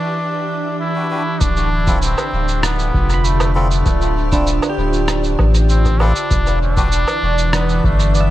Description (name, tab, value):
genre	ambient dub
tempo	98 BPM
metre	4/4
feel	straight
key	D dorian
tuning	A4 = 440 Hz
part	trombone with straight mute	melody	0.0-8.3 s	A3 to E4	-22 LUFS	equal	dub echo
part	soft additive organ-like pad	sustained chords	0.0-8.3 s	D3 to E5	-23 LUFS	right 1 dB	ensemble chorus, built-in reverb
part	pedal steel guitar	arpeggios	0.0-8.3 s	D4 to B5	-26 LUFS	right 3 dB	dub echo
part	melodica	stabs	1.0-6.9 s	C4 to B4	-28 LUFS	left 2 dB	dub echo
part	warm sub bass	bass	1.4-8.3 s	D1 to A1	-16 LUFS	equal	none
part	electronic cabasa, woodblock and rim click	drums	1.4-8.3 s	none	-24 LUFS	right 2 dB	dub echo
part	electronic kick drum	drums	1.4-8.0 s	none	-20 LUFS	equal	none
part	bubbling stepped-filter texture	texture	2.8-8.3 s	D5	-27 LUFS	right 2 dB	chorus, built-in reverb
room	light reverb, digital ambience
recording	echo-heavy mix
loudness	-14 LUFS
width	side -14 dB against mid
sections	0.0-1.4 A section; 1.4-8.3 B section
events	none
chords	0.0 Em7; 1.4 Dm7; 6.3 Em7